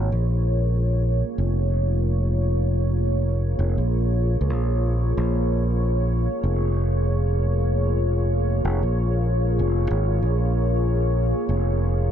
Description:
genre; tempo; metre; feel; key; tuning
ambient dub; 95 BPM; 4/4; swing 58% on 16ths; Bb minor; A4 = 440 Hz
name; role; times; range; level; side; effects
deep dark ambient pad; sustained chords; 0.0-12.1 s; Bb3 to Db5; -26 LUFS; equal; chorus, built-in reverb
fingered electric bass; bass; 0.0-12.1 s; F1 to Db2; -21 LUFS; equal; none
room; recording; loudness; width
digital ambience; dark, warm production; -20 LUFS; side -9 dB against mid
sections
0.0-12.1 A section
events
none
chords
0.0 Bbm7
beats
| 0.12 0.75 1.38 2.01 | 2.65 3.28 3.91 4.54 | 5.17 5.80 6.43 7.07 | 7.70 8.33 8.96 9.59 | 10.22 10.86 11.49

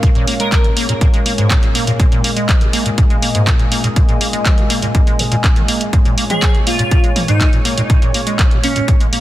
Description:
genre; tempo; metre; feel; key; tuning
acid house; 122 BPM; 4/4; straight; Bb minor; A4 = 440 Hz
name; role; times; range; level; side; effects
warm analog pad; sustained chords; 0.0-9.2 s; Bb2 to Eb5; -22 LUFS; equal; chorus, sidechain pumping
acid bass, square; riff; 0.0-9.2 s; Ab2 to Db4; -19 LUFS; equal; overdrive, wide subtle chorus, sidechain pumping, dub echo
electronic kick drum; drums; 0.0-9.0 s; none; -13 LUFS; equal; small room ambience
punchy analog drum machine; drums; 0.0-9.2 s; handclaps, hi-hat, toms; -20 LUFS; equal; small room ambience
warbly tape-like pad; texture; 0.0-9.2 s; Db4 to Ab5; -28 LUFS; left 1 dB; chorus, built-in reverb, sidechain pumping
airy dreamy lead; melody; 0.4-0.6, 6.3-8.8 s; Db4 to Bb4; -22 LUFS; right 1 dB; chorus, dub echo
room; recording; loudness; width
light reverb; dense, heavily limited modern master; -12 LUFS; side -15 dB against mid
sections
0.0-9.2 A section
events
none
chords
0.0 Bbm7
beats
| 0.03 0.52 1.01 1.50 | 2.00 2.49 2.98 3.47 | 3.96 4.46 4.95 5.44 | 5.93 6.42 6.91 7.41 | 7.90 8.39 8.88

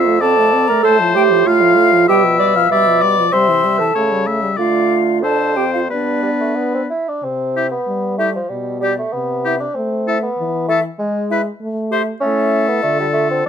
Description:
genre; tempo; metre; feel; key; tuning
quick classical-period movement for wind quintet; 96 BPM; 2/4; rubato; C major; A4 = 440 Hz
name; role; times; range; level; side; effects
concert flute; melody; 0.0-13.5 s; D5 to F6; -19 LUFS; left 4 dB; none
clear oboe; second line; 0.0-13.5 s; G4 to F5; -19 LUFS; left 5 dB; none
dark clarinet; accompaniment; 0.0-13.5 s; D4 to F5; -17 LUFS; right 6 dB; none
warm French horn; accompaniment; 0.0-13.5 s; B2 to D4; -22 LUFS; left 1 dB; none
mellow bassoon; bass; 0.0-13.5 s; F2 to E4; -20 LUFS; right 1 dB; none
room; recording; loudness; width
light reverb; close, detailed microphones; -13 LUFS; side -8 dB against mid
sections
0.0-7.2 A section; 7.2-13.5 B section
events
none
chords
0.0 F; 0.8 F/A; 2.1 G7/B; 3.3 C; 4.0 A7/C#; 4.6 Dm; 5.2 Dm/F; 5.9 G; 7.2 C; 8.5 G/B; 9.1 C; 9.8 Am; 11.0 E/G#; 11.6 A7(no3); 12.2 A; 12.8 Dm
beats
0.21 | 0.83 1.46 | 2.08 2.70 | 3.33 3.95 | 4.58 5.22 | 5.90 6.57 | 7.23 7.87 | 8.50 9.13 | 9.76 10.38 | 10.99 11.61 | 12.22 12.84 | 13.46

